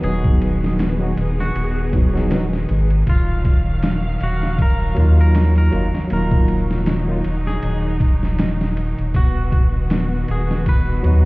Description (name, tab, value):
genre	trip hop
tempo	79 BPM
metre	4/4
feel	swing 56% on 16ths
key	Eb minor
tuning	A4 = 440 Hz
part	twangy electric guitar	melody	0.0-11.2 s	F4 to B4	-30 LUFS	equal	tape echo
part	barky tine electric piano	accompaniment	0.0-11.3 s	F#3 to Ab4	-24 LUFS	equal	overdrive, harmonic tremolo, vintage 12-bit sampler grit, tape echo
part	rich symphonic string section	sustained chords	0.0-11.3 s	Eb3 to F5	-25 LUFS	equal	none
part	round analog bass	bass	0.0-11.3 s	D#1 to Eb2	-18 LUFS	equal	none
part	boom bap sampler-style drum kit	drums	0.0-11.2 s	kick drum, ride cymbal, snare drum	-19 LUFS	equal	vintage 12-bit sampler grit
room	little or no reverb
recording	heard muffled through a wall, club reverb, vinyl crackle, EQ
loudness	-16 LUFS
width	side -22 dB against mid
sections	0.0-11.3 A section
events	none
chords	0.0 B/D#; 3.1 Ebmadd9; 9.1 B/D#